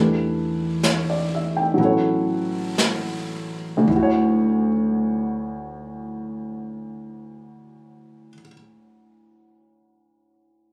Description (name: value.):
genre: jazz ballad.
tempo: 53-68 BPM.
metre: 4/4.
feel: swing 69% on 8ths.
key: D major.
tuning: A4 = 440 Hz.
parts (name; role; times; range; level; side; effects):
warm baby grand piano; accompaniment; 0.0-10.7 s; D2 to G5; -25 LUFS; equal; none.
upright bass; bass; 0.0-8.3 s; A1 to E2; -28 LUFS; equal; none.
jazz brush drum kit; drums; 0.8-4.8 s; brushed snare drum, hi-hat, kick drum, snare drum; -28 LUFS; equal; none.
room: light reverb.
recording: recorded on a phone in the room, club reverb, compression.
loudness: -22 LUFS.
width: mono.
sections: 0.0-3.9 A section; 3.9-8.4 B section.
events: slowing down 0.0-3.9.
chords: 0.0 Em7; 1.8 A; 3.9 Dmaj9.